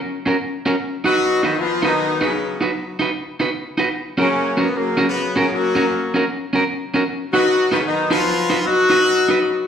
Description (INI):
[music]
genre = ska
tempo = 153 BPM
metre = 4/4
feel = swing 61% on 8ths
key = unclear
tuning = A4 = 440 Hz
[part]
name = electric guitar at the edge of break-up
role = accompaniment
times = 0.3-9.4 s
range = C#4 to B4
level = -20 LUFS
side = right 2 dB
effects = none
[part]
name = clear horn section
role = melody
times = 1.1-9.7 s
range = C#3 to F#4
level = -17 LUFS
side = left 2 dB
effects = none
[sound]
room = wet large studio reverb, RT60 1.1 s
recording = band playing live in one room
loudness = -16 LUFS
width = side -8 dB against mid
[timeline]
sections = 0.0-9.7 A section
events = none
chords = 0.0 F#; 0.8 B; 3.9 F#; 7.1 B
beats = 0.03 0.42 | 0.81 1.21 1.60 1.99 | 2.38 2.77 3.16 3.56 | 3.95 4.34 4.73 5.12 | 5.52 5.91 6.30 6.69 | 7.08 7.48 7.87 8.26 | 8.65 9.05 9.44